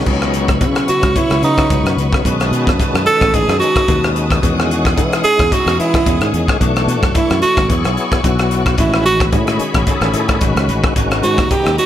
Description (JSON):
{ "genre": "electric jazz fusion", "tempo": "110 BPM", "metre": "4/4", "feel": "swing 54% on 16ths", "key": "C# minor", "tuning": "A4 = 442 Hz", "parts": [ { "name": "tonewheel organ", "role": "accompaniment", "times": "0.0-11.9 s", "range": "C#3 to A4", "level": "-20 LUFS", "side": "left 2 dB", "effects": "slow rotary speaker, overdrive, chorus vibrato" }, { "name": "bright studio string section", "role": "sustained chords", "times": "0.0-11.9 s", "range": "F#4 to D#6", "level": "-25 LUFS", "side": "left 2 dB", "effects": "none" }, { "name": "sustaining fretless electric bass", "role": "bass", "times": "0.0-11.8 s", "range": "G#1 to E3", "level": "-18 LUFS", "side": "equal", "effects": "analog chorus" }, { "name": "crisp fusion drum kit", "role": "drums", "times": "0.1-11.9 s", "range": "crash cymbal, hi-hat, kick drum, rim click", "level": "-17 LUFS", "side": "equal", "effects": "none" }, { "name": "warm tenor saxophone", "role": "melody", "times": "0.9-11.9 s", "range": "D#4 to A4", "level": "-16 LUFS", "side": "right 2 dB", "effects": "tape echo" } ], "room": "light reverb, small room ambience", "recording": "none", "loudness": "-12 LUFS", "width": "side -11 dB against mid", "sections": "0.1-11.9 A section", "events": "tenor saxophone solo 0.0-11.9", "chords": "0.1 C#m7; 2.2 B7; 4.4 Emaj9; 6.6 Bm9; 7.7 E13; 8.8 A69; 11.0 G#m9" }